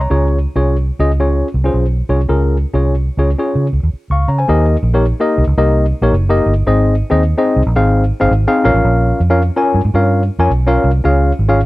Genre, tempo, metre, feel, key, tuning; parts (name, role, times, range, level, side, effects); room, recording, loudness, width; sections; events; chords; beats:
uptempo 1960s-style soul; 110 BPM; 4/4; swing 63% on 8ths; Eb mixolydian; A4 = 440 Hz
tine electric piano; accompaniment; 0.0-11.6 s; Bb3 to Db6; -15 LUFS; left 1 dB
vintage muted fingered electric bass; bass; 0.0-11.7 s; Gb1 to Db3; -14 LUFS; equal
little or no reverb; -11 LUFS; side -18 dB against mid
0.0-4.5 A section; 4.5-11.7 B section
0.1 Db; 4.5 Eb; 6.7 Ab; 8.6 Bbm; 11.0 Db
| 0.11 0.66 1.21 1.75 | 2.30 2.85 3.40 3.94 | 4.49 5.04 5.58 6.13 | 6.67 7.22 7.77 8.31 | 8.86 9.41 9.95 10.50 | 11.04 11.59